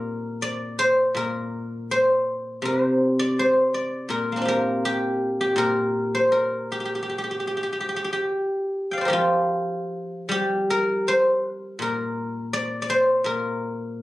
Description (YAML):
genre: chinese traditional, Chinese solo plucked strings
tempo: 75-83 BPM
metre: 4/4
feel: rubato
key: unclear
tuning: A4 = 440 Hz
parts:
  - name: guzheng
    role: solo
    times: 0.0-14.0 s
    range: Bb2 to G5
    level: -21 LUFS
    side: equal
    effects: none
room: light reverb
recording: recorded on a phone in the room, club reverb, compression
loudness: -21 LUFS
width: side -17 dB against mid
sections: 0.0-14.0 A section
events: none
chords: none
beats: 0.41 1.16 1.91 | 2.64 3.38 4.11 4.84 | 5.59 6.34 7.12 7.92 | 8.71 9.51 10.30 11.06 | 11.80 12.53 13.26 14.00